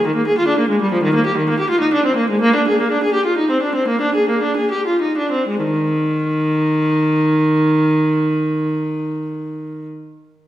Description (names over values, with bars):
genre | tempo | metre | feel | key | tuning
classical, baroque-style suite movement for unaccompanied viola | 62-91 BPM (dotted quarters) | 12/8 | rubato | unclear | A4 = 439 Hz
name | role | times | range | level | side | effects
warm viola | solo | 0.0-9.9 s | Eb3 to Ab4 | -15 LUFS | equal | none
room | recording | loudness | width
wet recital hall reverb, RT60 1.7 s | recorded in a church or concert hall | -15 LUFS | side -13 dB against mid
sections
0.0-5.6 A section; 5.6-9.1 B section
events
slowing down 0.6-5.6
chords
none